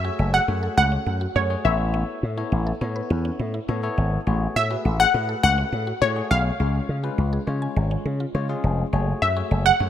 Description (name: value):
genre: pop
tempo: 103 BPM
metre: 4/4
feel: straight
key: F# minor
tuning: A4 = 440 Hz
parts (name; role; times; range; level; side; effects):
- analog pluck; melody; 0.0-9.9 s; C#5 to F#5; -22 LUFS; equal; chorus
- bell-like tine electric piano; accompaniment; 0.0-9.9 s; G#3 to C#5; -31 LUFS; left 5 dB; auto-pan
- mallet-like synth pluck; arpeggios; 0.0-9.9 s; G#3 to G#5; -34 LUFS; right 4 dB; chorus, tape echo
- slap bass with an envelope filter; bass; 0.0-9.9 s; E#1 to C#3; -23 LUFS; equal; none
room: light reverb, digital ambience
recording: rough home demo mix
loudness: -20 LUFS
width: side -10 dB against mid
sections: 0.0-9.9 A section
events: none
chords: 0.0 F#madd9; 1.6 Aadd9; 4.3 F#madd9/A; 6.6 C#; 8.9 F#madd9